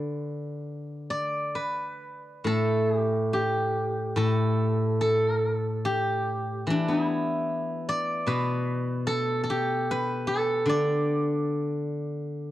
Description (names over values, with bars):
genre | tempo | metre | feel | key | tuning
chinese traditional, Chinese solo plucked strings | 73 BPM | 4/4 | uneven beats, rubato | D zhi mode | A4 = 441 Hz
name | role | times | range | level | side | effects
steel-string zither | solo | 0.0-12.5 s | A2 to D5 | -25 LUFS | equal | none
room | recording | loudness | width
light reverb | home recording on cassette | -24 LUFS | side -14 dB against mid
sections
0.0-2.5 A section; 2.5-12.5 B section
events
none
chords
none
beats
0.63 1.54 | 2.45 3.33 4.18 5.01 | 5.85 6.68 7.49 8.29 | 9.09 9.88 10.68 11.49 | 12.32